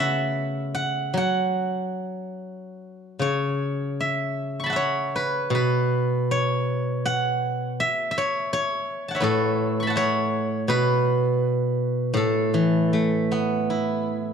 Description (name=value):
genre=chinese traditional, Chinese solo plucked strings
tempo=70-84 BPM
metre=4/4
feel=rubato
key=A gong mode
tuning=A4 = 440 Hz
part: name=steel-string zither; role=solo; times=0.0-14.3 s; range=A2 to C#6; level=-22 LUFS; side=equal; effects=none
room=moderate recital hall reverb, RT60 1.6 s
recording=dark, warm production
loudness=-22 LUFS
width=side -7 dB against mid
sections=0.0-14.3 A section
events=none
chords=none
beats=| 0.00 0.78 1.56 2.39 | 3.22 4.00 4.76 5.53 | 6.30 7.05 7.79 8.52 | 9.23 9.97 10.70 11.43 | 12.16 12.92 13.69